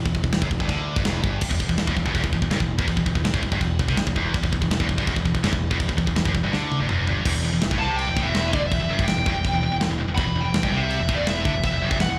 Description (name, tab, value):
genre	heavy metal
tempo	164 BPM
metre	4/4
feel	straight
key	E minor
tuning	A4 = 441 Hz
part	high-gain distorted guitar	riff	0.0-12.2 s	E2 to D3	-31 LUFS	equal	distortion
part	growling picked electric bass	bass	0.0-12.2 s	E1 to D2	-29 LUFS	equal	overdrive
part	tight metal drum kit	drums	0.1-12.1 s	china cymbal, crash cymbal, kick drum, snare drum, toms	-27 LUFS	equal	none
part	scooped high-gain guitar	riff	1.5-12.2 s	E2 to D3	-29 LUFS	equal	distortion, slapback echo
part	high-gain lead guitar	melody	7.8-12.2 s	D5 to B5	-28 LUFS	equal	distortion
room	little or no reverb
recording	live gig heard through the venue's PA, club reverb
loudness	-23 LUFS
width	mono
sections	0.0-7.3 A section; 7.3-12.2 B section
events	drum fill 6.5-7.3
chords	0.0 Em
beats	0.33 0.69 1.06 | 1.42 1.78 2.15 2.51 | 2.88 3.24 3.61 3.97 | 4.34 4.70 5.07 5.43 | 5.80 6.16 6.53 6.89 | 7.26 7.62 7.99 8.35 | 8.72 9.08 9.45 9.81 | 10.18 10.54 10.91 11.27 | 11.64 12.00